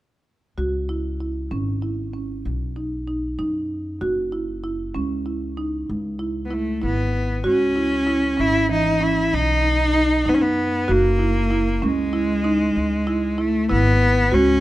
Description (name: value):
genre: contemporary instrumental, chamber music in an uneven meter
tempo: 192 BPM (eighths)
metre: 11/8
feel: straight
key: C# minor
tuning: A4 = 438 Hz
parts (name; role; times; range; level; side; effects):
- marimba with medium mallets; arpeggios; 0.6-14.6 s; E3 to F#4; -23 LUFS; right 2 dB; none
- upright bass; bass; 0.6-14.6 s; F#1 to F#2; -25 LUFS; left 1 dB; none
- clear cello; melody; 6.5-14.6 s; G#3 to E4; -20 LUFS; left 1 dB; none
room: light reverb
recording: close, detailed microphones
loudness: -19 LUFS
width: side -15 dB against mid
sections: 0.6-7.4 A section; 7.4-14.6 B section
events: none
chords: 0.6 C#m; 2.5 B; 4.0 F#5; 5.9 C#m7; 7.4 C#m; 9.3 B; 10.9 F#add9; 12.8 C#m7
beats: | 0.58 0.89 1.21 1.52 1.83 2.14 2.45 2.77 3.08 3.39 3.70 | 4.01 4.33 4.64 4.95 5.26 5.57 5.89 6.20 6.51 6.82 7.14 | 7.45 7.76 8.07 8.39 8.70 9.01 9.32 9.64 9.95 10.26 10.57 | 10.89 11.20 11.51 11.82 12.14 12.45 12.76 13.07 13.39 13.70 14.01 | 14.33